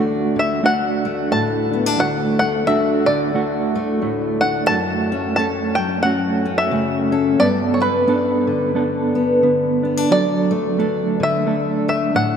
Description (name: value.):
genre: acoustic folk duo or small band.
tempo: 89 BPM.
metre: 4/4.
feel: swing 60% on 8ths.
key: D major.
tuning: A4 = 440 Hz.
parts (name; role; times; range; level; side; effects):
fingerpicked steel-string acoustic guitar; accompaniment; 0.0-12.4 s; D2 to A4; -21 LUFS; left 4 dB; none.
mellow electric guitar; arpeggios; 0.0-12.4 s; F#3 to A4; -21 LUFS; right 4 dB; tremolo.
bluegrass banjo; melody; 0.4-12.4 s; B4 to A5; -21 LUFS; equal; none.
room: wet cathedral reverb, RT60 6.7 s.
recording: in a vast, echoing space.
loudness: -16 LUFS.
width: side -7 dB against mid.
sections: 0.0-12.4 A section.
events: none.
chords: 0.0 D; 4.7 F#m; 7.4 Gadd9; 10.1 D.